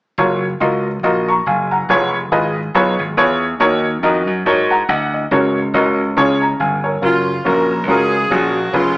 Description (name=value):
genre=uptempo gospel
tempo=140 BPM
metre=4/4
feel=swing 57% on 8ths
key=F# major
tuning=A4 = 441 Hz
part: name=warm upright piano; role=accompaniment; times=0.2-9.0 s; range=C#3 to C#6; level=-15 LUFS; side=equal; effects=none
part: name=slap bass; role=bass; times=0.2-9.0 s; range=E#1 to G#2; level=-20 LUFS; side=equal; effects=none
part: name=warm saxophone section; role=melody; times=7.0-9.0 s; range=G#3 to A#4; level=-18 LUFS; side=equal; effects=none
room=moderate stone room reverb, RT60 1.4 s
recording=band playing live in one room, small speaker sound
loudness=-13 LUFS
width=side -21 dB against mid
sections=0.2-7.0 A section; 7.0-9.0 B section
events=none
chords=0.2 F#maj7; 1.9 C#7/E#; 3.6 D#m7; 5.3 F#/C#; 6.2 C#; 7.0 F#maj7